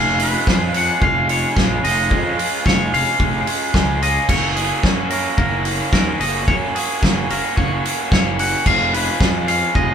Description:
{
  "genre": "indie rock",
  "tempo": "110 BPM",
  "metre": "4/4",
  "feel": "straight",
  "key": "F# major",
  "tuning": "A4 = 440 Hz",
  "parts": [
    { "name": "twangy electric guitar", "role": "melody", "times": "0.0-9.9 s", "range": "G#4 to F#5", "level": "-21 LUFS", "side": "left 1 dB", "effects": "none" },
    { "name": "raw garage guitar", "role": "riff", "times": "0.0-9.9 s", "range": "E#3 to F#4", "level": "-21 LUFS", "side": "right 1 dB", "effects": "overdrive" },
    { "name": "fuzz picked electric bass", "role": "bass", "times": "0.0-9.9 s", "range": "E#1 to F#2", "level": "-23 LUFS", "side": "equal", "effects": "overdrive" },
    { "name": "loose indie drum kit", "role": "drums", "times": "0.2-9.9 s", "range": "crash cymbal, hi-hat, kick drum, snare drum", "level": "-19 LUFS", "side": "equal", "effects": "none" }
  ],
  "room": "moderate large studio reverb, RT60 1.0 s",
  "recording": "band playing live in one room",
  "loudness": "-15 LUFS",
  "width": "side -8 dB against mid",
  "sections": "0.0-9.9 A section",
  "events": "none",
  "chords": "0.0 C#/E#; 4.3 F#; 8.7 C#/E#"
}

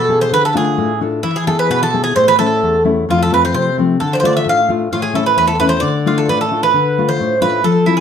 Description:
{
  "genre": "greek folk",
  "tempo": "131 BPM",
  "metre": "2/4",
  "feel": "straight",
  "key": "D dorian sharp4",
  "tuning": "A4 = 440 Hz",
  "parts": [
    { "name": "Greek bouzouki", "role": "melody", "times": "0.0-8.0 s", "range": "E4 to F5", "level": "-14 LUFS", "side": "right 2 dB", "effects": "slapback echo" },
    { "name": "nylon-string guitar", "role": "accompaniment", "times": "0.0-8.0 s", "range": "E2 to A4", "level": "-16 LUFS", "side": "left 4 dB", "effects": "none" }
  ],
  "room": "moderate studio reverb, RT60 0.6 s",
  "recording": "none",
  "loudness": "-12 LUFS",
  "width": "side -8 dB against mid",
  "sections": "0.0-6.7 A section; 6.7-8.0 B section",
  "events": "speeding up 0.0-8.0",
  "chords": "0.3 Dm; 1.2 E; 2.2 A; 3.1 F; 4.0 Dm; 4.9 A; 5.8 Dm"
}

